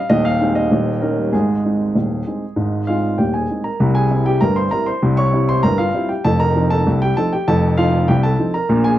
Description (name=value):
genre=ragtime piano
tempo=98 BPM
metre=2/4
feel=straight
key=unclear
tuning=A4 = 439 Hz
part: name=warm grand piano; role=solo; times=0.0-9.0 s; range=Eb1 to Db6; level=-15 LUFS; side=equal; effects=none
room=moderate club reverb, RT60 0.7 s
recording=dark, warm production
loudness=-15 LUFS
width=side -13 dB against mid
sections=0.0-3.8 A section; 3.8-9.0 B section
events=none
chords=0.1 Ab/Eb; 0.7 Eb7; 1.3 Ab; 3.8 C7; 6.2 F7